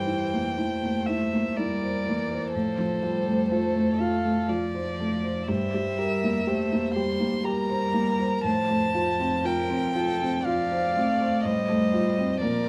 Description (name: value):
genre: classical, slow romantic movement for piano quartet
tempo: 61 BPM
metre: 3/4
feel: rubato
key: F major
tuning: A4 = 441 Hz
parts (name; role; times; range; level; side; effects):
- warm violin; melody; 0.0-12.7 s; C5 to C6; -31 LUFS; equal; none
- rich violin; second line; 0.0-12.7 s; A4 to D5; -35 LUFS; equal; none
- warm cello; second line; 0.0-12.7 s; E3 to A3; -33 LUFS; equal; none
- dark baby grand piano; accompaniment; 0.0-12.7 s; G2 to C5; -29 LUFS; equal; none
room: moderate recital hall reverb, RT60 1.5 s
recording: close, detailed microphones, vinyl crackle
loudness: -26 LUFS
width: mono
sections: 0.0-12.7 A section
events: none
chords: 0.0 C7/G; 2.5 F/A; 5.5 C7/G; 8.4 F/A